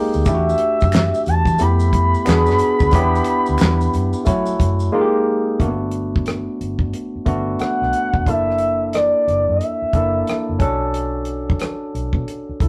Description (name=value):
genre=R&B, neo-soul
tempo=90 BPM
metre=4/4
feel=swing 64% on 16ths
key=unclear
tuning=A4 = 442 Hz
part: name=barky tine electric piano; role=accompaniment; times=0.0-12.7 s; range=Ab3 to A4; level=-23 LUFS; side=equal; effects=none
part: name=vintage muted fingered electric bass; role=bass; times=0.1-12.7 s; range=E1 to F#3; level=-24 LUFS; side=equal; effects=none
part: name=maracas and finger snaps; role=percussion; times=0.1-4.9 s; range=none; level=-40 LUFS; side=equal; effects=none
part: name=gliding portamento lead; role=melody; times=0.3-10.6 s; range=D5 to B5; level=-22 LUFS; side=equal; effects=chorus
part: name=damped 70s drum kit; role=drums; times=0.3-12.7 s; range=handclaps, hi-hat, kick drum, rim click, snare drum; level=-22 LUFS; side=equal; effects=none
room=moderate studio reverb, RT60 0.6 s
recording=rough rehearsal-room recording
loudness=-18 LUFS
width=mono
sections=0.0-5.6 A section; 5.6-12.7 B section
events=silent gap 4.9-5.6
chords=0.3 Em11; 1.6 Fmaj9#11; 2.3 E9; 2.9 Em7; 4.3 F#m7; 4.9 Ebadd11/Ab; 5.6 Gmaj7; 8.3 F#7alt; 10.6 Bm9